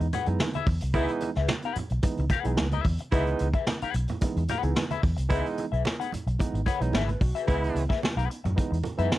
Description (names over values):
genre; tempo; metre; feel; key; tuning
funk; 110 BPM; 4/4; straight; C# minor; A4 = 440 Hz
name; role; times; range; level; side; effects
electric guitar at the edge of break-up; accompaniment; 0.0-9.2 s; G#4 to F#5; -32 LUFS; left 9 dB; wah
barky tine electric piano; stabs; 0.0-9.2 s; E3 to C#5; -32 LUFS; right 4 dB; none
vintage muted fingered electric bass; bass; 0.0-9.1 s; G#1 to F#2; -27 LUFS; equal; none
vintage brush drum kit; drums; 0.0-9.2 s; hi-hat, kick drum, snare drum; -28 LUFS; equal; none
congas; percussion; 0.1-9.2 s; none; -35 LUFS; right 4 dB; none
bright baritone saxophone; second line; 0.9-7.8 s; E4; -34 LUFS; right 4 dB; none
room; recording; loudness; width
light reverb; dark, warm production; -24 LUFS; side -15 dB against mid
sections
0.0-9.2 A section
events
tine electric piano fill 6.4-7.5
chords
0.0 C#m7